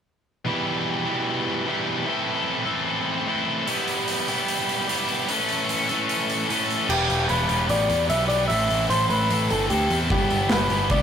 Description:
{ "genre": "indie rock", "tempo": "149 BPM", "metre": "4/4", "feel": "straight", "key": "E minor", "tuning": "A4 = 440 Hz", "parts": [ { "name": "high-gain distorted guitar", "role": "riff", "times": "0.4-11.0 s", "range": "E2 to A4", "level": "-23 LUFS", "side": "equal", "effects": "distortion" }, { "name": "big rock drum kit", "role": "drums", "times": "3.7-11.0 s", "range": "crash cymbal, hi-hat, kick drum, snare drum", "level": "-28 LUFS", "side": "right 2 dB", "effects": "none" }, { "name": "electric guitar through a small old amp", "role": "melody", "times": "6.9-11.0 s", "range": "G4 to E5", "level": "-23 LUFS", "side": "left 1 dB", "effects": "warbly pitch drift" }, { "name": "growling picked electric bass", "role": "bass", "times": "6.9-11.0 s", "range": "E1 to E2", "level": "-25 LUFS", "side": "equal", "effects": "overdrive" } ], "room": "moderate studio reverb, RT60 0.5 s", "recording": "rough rehearsal-room recording, warm saturation", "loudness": "-21 LUFS", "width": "side -8 dB against mid", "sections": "0.5-6.9 A section; 6.9-11.0 B section", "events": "none", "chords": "0.5 Em; 2.1 Am; 3.7 Em/G; 5.3 A5; 6.9 Em7; 8.5 Am7; 10.1 Em/G" }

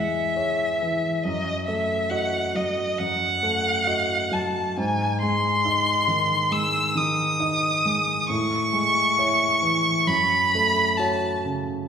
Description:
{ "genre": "classical, romantic duo for violin and grand piano", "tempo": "68 BPM", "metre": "4/4", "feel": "rubato", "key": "unclear", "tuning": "A4 = 440 Hz", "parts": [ { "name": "rich violin", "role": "melody", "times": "0.0-11.4 s", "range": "D#5 to E6", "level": "-22 LUFS", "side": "equal", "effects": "none" }, { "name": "dark grand piano", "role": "accompaniment", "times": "0.0-11.9 s", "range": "E2 to D#5", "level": "-26 LUFS", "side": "equal", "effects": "none" } ], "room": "wet recital hall reverb, RT60 1.6 s", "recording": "recorded in a church or concert hall", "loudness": "-20 LUFS", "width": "side -7 dB against mid", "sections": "0.0-11.9 A section", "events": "none", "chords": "0.0 C#m/E; 1.2 D#dim/F#; 4.8 G#; 8.3 Amaj7; 10.1 F#m" }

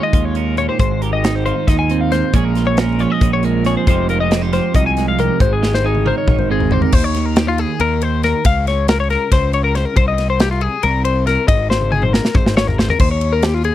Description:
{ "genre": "math rock and midwest emo", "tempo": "276 BPM (eighths)", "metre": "7/8", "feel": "straight", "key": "Ab major", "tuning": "A4 = 440 Hz", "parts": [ { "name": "twelve-string electric guitar", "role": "accompaniment", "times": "0.0-8.4 s", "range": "F2 to Bb4", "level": "-20 LUFS", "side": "right 11 dB", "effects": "none" }, { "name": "twelve-string electric guitar", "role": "arpeggios", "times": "0.0-13.7 s", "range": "F4 to Ab5", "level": "-19 LUFS", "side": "left 6 dB", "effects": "none" }, { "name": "fuzz picked electric bass", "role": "bass", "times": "0.1-13.7 s", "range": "F1 to Eb2", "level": "-18 LUFS", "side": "equal", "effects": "overdrive" }, { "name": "modern studio drum kit", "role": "drums", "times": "0.1-13.7 s", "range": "crash cymbal, hi-hat, kick drum, ride cymbal, snare drum, toms", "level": "-16 LUFS", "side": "equal", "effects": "none" } ], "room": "little or no reverb", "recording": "dry, close 1970s-style studio recording", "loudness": "-13 LUFS", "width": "side -12 dB against mid", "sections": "0.0-6.9 A section; 6.9-13.7 B section", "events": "drum fill 5.6-6.9, 11.7-13.0", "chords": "0.0 Eb9sus4; 0.8 Ab6; 2.3 Bbm7; 3.9 Fm9; 5.4 Abmaj7; 6.9 Eb7(no3); 8.5 Dbmaj7; 10.0 Cm7; 11.5 Ab; 13.0 Eb7" }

